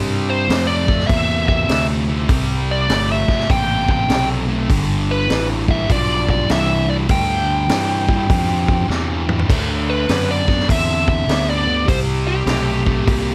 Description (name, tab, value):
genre	blues rock power trio and southern rock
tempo	100 BPM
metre	4/4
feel	swing 65% on 8ths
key	G mixolydian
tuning	A4 = 439 Hz
part	thick fuzz guitar	riff	0.0-13.3 s	G2 to C4	-24 LUFS	equal	distortion
part	growling fingered electric bass	bass	0.0-13.3 s	G1 to G2	-24 LUFS	equal	overdrive
part	biting lead guitar	melody	0.3-13.3 s	G4 to G5	-23 LUFS	equal	wah, overdrive
part	vintage drum kit	drums	0.5-13.3 s	crash cymbal, hi-hat, kick drum, snare drum, toms	-23 LUFS	equal	none
room	light reverb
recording	none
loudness	-18 LUFS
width	mono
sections	0.0-13.3 A section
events	drum fill 8.9-9.5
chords	0.0 C; 4.7 G; 9.5 D; 11.9 C5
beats	0.49 1.09 1.69 | 2.29 2.89 3.49 4.09 | 4.69 5.29 5.89 6.49 | 7.09 7.69 8.29 8.89 | 9.49 10.09 10.69 11.28 | 11.88 12.48 13.08